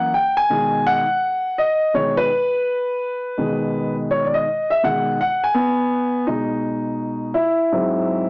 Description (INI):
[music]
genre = hip hop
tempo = 83 BPM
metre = 4/4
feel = swing 64% on 16ths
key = B major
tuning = A4 = 440 Hz
[part]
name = dark baby grand piano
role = solo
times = 0.0-8.3 s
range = G#2 to G#5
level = -17 LUFS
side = equal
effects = cassette tape
[sound]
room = light reverb, studio reverb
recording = home recording on cassette, small speaker sound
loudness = -17 LUFS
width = side -33 dB against mid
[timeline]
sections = 0.0-6.3 A section; 6.3-8.3 B section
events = grand piano solo 0.0-6.3, 6.3-8.3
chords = 0.5 B6; 7.7 G#aug7